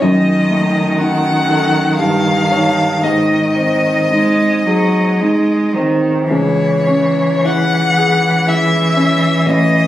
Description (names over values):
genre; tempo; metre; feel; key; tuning
classical, slow romantic movement for piano trio; 51-62 BPM; 3/4; rubato; C# minor; A4 = 442 Hz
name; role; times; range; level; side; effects
rich violin; melody; 0.0-9.9 s; C#5 to F#5; -16 LUFS; left 2 dB; none
rich cello; second line; 0.0-9.9 s; D#3 to G#3; -16 LUFS; right 2 dB; none
warm grand piano; accompaniment; 0.0-9.9 s; A1 to C#5; -16 LUFS; left 1 dB; none
room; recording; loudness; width
light reverb; recorded on a phone in the room, studio reverb, compression; -12 LUFS; side -13 dB against mid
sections
0.0-9.9 A section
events
none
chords
0.0 D#dim/F#; 2.0 D#7/G; 3.0 G#; 6.3 C#m